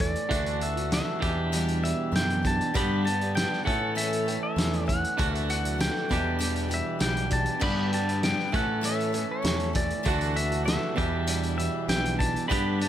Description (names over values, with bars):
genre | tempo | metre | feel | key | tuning
folk rock and heartland rock | 98 BPM | 4/4 | straight | unclear | A4 = 440 Hz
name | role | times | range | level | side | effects
pedal steel guitar | melody | 0.0-12.9 s | C#5 to B5 | -31 LUFS | left 1 dB | digital delay
dark concert grand piano | accompaniment | 0.0-12.9 s | F#3 to G5 | -41 LUFS | right 3 dB | none
picked twelve-string acoustic guitar | accompaniment | 0.0-12.9 s | E2 to A4 | -34 LUFS | left 4 dB | none
twangy electric guitar | riff | 0.0-12.9 s | E2 to A4 | -31 LUFS | right 4 dB | none
picked electric bass | bass | 0.0-12.9 s | B1 to A2 | -30 LUFS | equal | none
loose indie drum kit | drums | 0.0-12.9 s | crash cymbal, hi-hat, kick drum, snare drum | -30 LUFS | equal | none
room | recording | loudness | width
light reverb | none | -24 LUFS | side -11 dB against mid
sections
0.0-12.9 A section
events
none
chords
0.3 Dadd9; 1.2 Em7; 2.7 G; 3.7 A; 5.2 Dadd9; 6.1 Em7; 7.6 G; 8.5 A; 10.1 Dadd9; 11.0 Em7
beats
| 0.29 0.91 1.52 2.13 | 2.74 3.35 3.96 4.57 | 5.18 5.79 6.40 7.01 | 7.62 8.23 8.84 9.45 | 10.06 10.67 11.28 11.89 | 12.50